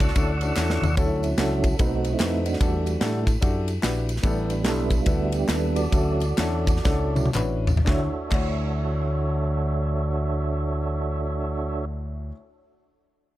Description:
uptempo gospel; 110-147 BPM; 4/4; swing 63% on 8ths; D major; A4 = 440 Hz
warm studio string section; melody; 0.0-0.6 s; F#4 to D5; -37 LUFS; left 1 dB
tonewheel organ; sustained chords; 0.0-11.9 s; F#3 to E6; -28 LUFS; right 4 dB; slow rotary speaker, overdrive
fingered electric bass; bass; 0.0-12.3 s; A1 to A2; -26 LUFS; equal
modern studio drum kit; drums; 0.0-8.4 s; crash cymbal, kick drum, ride cymbal, snare drum, toms; -25 LUFS; equal
tambourine and handclaps; percussion; 0.0-8.4 s; -38 LUFS; left 2 dB
warm baby grand piano; accompaniment; 0.2-12.3 s; D2 to C#5; -30 LUFS; left 3 dB
little or no reverb; -21 LUFS; side -15 dB against mid
1.0-7.9 A section; 7.9-12.2 B section
drum fill 0.6-1.0, 6.8-7.9; tonewheel organ solo 1.0-7.9; slowing down 4.2-7.9
0.0 Dmaj9; 1.8 B7b9; 2.6 Em11; 4.2 A9sus4; 5.9 Dmaj9

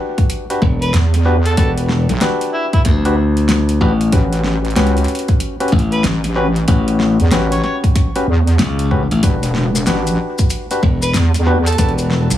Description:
glitch hop; 94 BPM; 4/4; swing 63% on 16ths; E dorian; A4 = 440 Hz
clav; stabs; 0.0-12.4 s; C#4 to B4; -21 LUFS; left 2 dB; sidechain pumping, tape echo
electronic kick drum; drums; 0.2-11.9 s; -15 LUFS; equal; studio reverb
pop drum kit; drums; 0.2-12.4 s; hi-hat, snare drum; -22 LUFS; left 1 dB; studio reverb
glassy slap bass; bass; 0.6-12.3 s; E1 to D2; -15 LUFS; left 1 dB
overdriven harmonica; melody; 0.8-11.9 s; E4 to C#5; -24 LUFS; equal; tape echo
wobble bass; bass; 0.9-12.4 s; E1 to E2; -14 LUFS; right 1 dB; chorus, tube saturation
maracas; percussion; 9.2-12.4 s; -26 LUFS; left 4 dB
little or no reverb; small room ambience; -13 LUFS; side -12 dB against mid
0.0-12.4 A section
0.0 Em7; 4.1 A13; 9.2 Em7

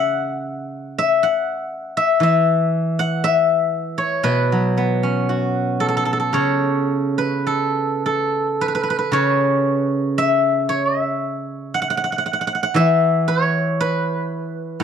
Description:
chinese traditional, Chinese solo plucked strings; 52-61 BPM; 4/4; rubato; A4 = 439 Hz
steel-string zither; solo; 0.0-14.8 s; A2 to F#5; -17 LUFS; equal
little or no reverb; dry, close 1970s-style studio recording; -17 LUFS; side -7 dB against mid
0.0-8.6 A section; 8.6-14.8 B section

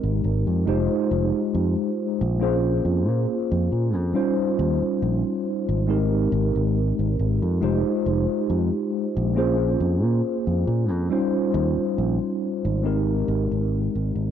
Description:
vaporwave; 69 BPM; 4/4; swing 54% on 16ths; Ab major; A4 = 440 Hz
mellow tine electric piano; accompaniment; 0.0-14.3 s; G3 to C5; -23 LUFS; equal; medium stereo tremolo, wide subtle chorus, vintage 12-bit sampler grit, tape echo
fingered electric bass; bass; 0.0-14.3 s; F1 to Bb2; -23 LUFS; equal
little or no reverb; dry, gritty hardware recording, cassette tape, nothing above 10.9 kHz; -20 LUFS; side -9 dB against mid
0.0-14.3 A section
fade-out 12.3-14.3
0.0 Abmaj9; 0.7 Fm9; 2.4 Bbm9; 4.2 Eb13; 5.9 Abmaj9; 7.6 Fm9; 9.4 Bbm9; 11.1 Eb13; 12.8 Abmaj9

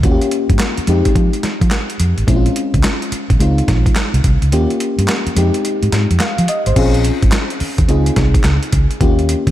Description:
R&B, new jack swing; 107 BPM; 4/4; swing 64% on 16ths; Bb dorian; A4 = 441 Hz
mellow FM electric piano; accompaniment; 0.0-9.5 s; Ab3 to F5; -18 LUFS; left 2 dB; chorus
vintage muted fingered electric bass; bass; 0.0-9.5 s; Ab1 to F3; -15 LUFS; equal
boom bap sampler-style drum kit; drums; 0.0-9.5 s; crash cymbal, handclaps, hi-hat, kick drum, snare drum; -17 LUFS; equal; overdrive
light reverb, digital ambience; -12 LUFS; side -13 dB against mid
0.0-6.8 A section; 6.8-9.5 B section
kick muted 4.5-6.8
0.0 Eb7; 0.9 Fm9; 2.3 Bbm9; 3.4 Dbmaj7; 4.5 Eb7; 5.4 Fm9; 6.8 Bbm9; 7.9 Dbmaj7; 9.0 Eb7

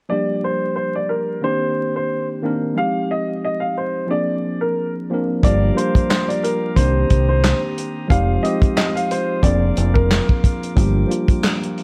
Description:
hip hop, boom-bap hip-hop; 90 BPM; 4/4; swing 56% on 16ths; A4 = 442 Hz
warm upright piano; melody; 0.1-10.2 s; Bb4 to F5; -24 LUFS; equal; high-pass filter, low-pass filter, analog delay
tine electric piano; accompaniment; 0.1-11.8 s; Eb3 to Bb4; -25 LUFS; equal; high-pass filter, low-pass filter
tonewheel organ; sustained chords; 5.4-11.8 s; F4 to Eb6; -35 LUFS; equal; stopped rotary speaker, high-pass filter, low-pass filter
deep dub fingered electric bass; bass; 5.4-11.0 s; F1 to C2; -20 LUFS; equal
warm soul drum kit; drums; 5.4-11.8 s; handclaps, hi-hat, kick drum, snare drum; -20 LUFS; equal
light reverb, small room ambience; worn, warbling old tape, cassette tape, vinyl crackle, warbly pitch drift; -19 LUFS; mono
0.1-5.4 A section; 5.4-11.8 B section
0.1 Gm7; 1.4 Cm7; 2.8 Fm7; 4.1 Bb7/F; 5.4 Gm7; 6.8 Cm7; 8.1 Fm7; 9.4 Bb7/F; 10.8 Gm7

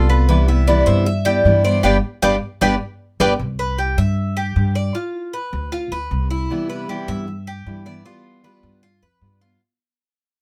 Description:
latin; 155 BPM; 4/4; straight; C major; A4 = 440 Hz
Cuban tres; melody; 0.0-3.3 s; A4 to G5; -22 LUFS; equal
fingerpicked steel-string acoustic guitar; accompaniment; 0.0-3.3, 6.5-9.6 s; C3 to F4; -25 LUFS; equal
Cuban tres; arpeggios; 0.0-9.6 s; E4 to E5; -26 LUFS; equal
upright bass; bass; 0.0-9.6 s; G1 to G2; -21 LUFS; equal
little or no reverb; close, detailed microphones; -19 LUFS; mono
0.0-3.4 A section; 3.4-9.6 B section
band accent 1.8-3.4; fade-out 3.4-9.6
0.3 Cmaj9; 1.8 G7; 3.4 Cmaj9; 8.1 G7

